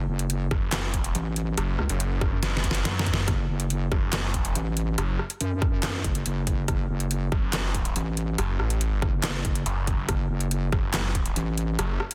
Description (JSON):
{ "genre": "heavy wobble dubstep", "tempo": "141 BPM", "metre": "4/4", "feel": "half-time", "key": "F# minor", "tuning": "A4 = 440 Hz", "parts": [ { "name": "wobble bass", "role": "bass", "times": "0.0-11.8 s", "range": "F#1 to F#2", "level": "-29 LUFS", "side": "equal", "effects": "chorus, overdrive" }, { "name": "dubstep drum kit", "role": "drums", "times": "0.2-12.1 s", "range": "handclaps, hi-hat, rim click, snare drum", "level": "-32 LUFS", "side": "equal", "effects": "soft clipping on snare" }, { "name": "snarling distorted saw bass", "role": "bass", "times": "0.5-12.0 s", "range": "F#1 to F#2", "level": "-30 LUFS", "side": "equal", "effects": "distortion, overdrive" }, { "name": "electronic kick drum", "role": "drums", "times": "0.5-11.2 s", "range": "none", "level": "-30 LUFS", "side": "equal", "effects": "none" } ], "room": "little or no reverb", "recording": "dense, heavily limited modern master", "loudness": "-26 LUFS", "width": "mono", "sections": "0.0-12.1 A section", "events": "drum fill 2.4-3.3", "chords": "0.0 F#m", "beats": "0.30 0.72 1.15 | 1.58 2.00 2.43 2.85 | 3.28 3.70 4.13 4.55 | 4.98 5.41 5.83 6.26 | 6.68 7.11 7.53 7.96 | 8.38 8.81 9.23 9.66 | 10.09 10.51 10.94 11.36 | 11.79" }